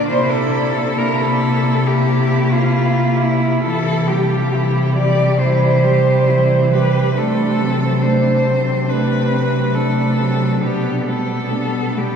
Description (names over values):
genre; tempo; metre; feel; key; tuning
classical, lyrical piece for cello ensemble; 68 BPM; 4/4; rubato; C major from 3.7 s; A4 = 440 Hz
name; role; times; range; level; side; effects
clear cello; melody; 0.0-12.2 s; E4 to D5; -19 LUFS; left 1 dB; none
rich cello; second line; 0.0-12.2 s; B3 to G4; -24 LUFS; right 4 dB; none
rich cello; accompaniment; 0.0-12.2 s; E3 to B3; -21 LUFS; equal; none
rich cello; bass; 0.0-12.2 s; B2 to D3; -18 LUFS; equal; none
room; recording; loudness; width
wet cathedral reverb, RT60 7.4 s; heard from further back in the room; -14 LUFS; side -7 dB against mid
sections
0.0-12.2 A section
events
none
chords
0.1 C7; 3.7 C; 7.2 D7/C; 10.6 G/B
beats
| 0.10 0.98 1.86 2.75 | 3.66 4.54 5.41 6.29 | 7.18 8.04 8.90 9.76 | 10.63 11.53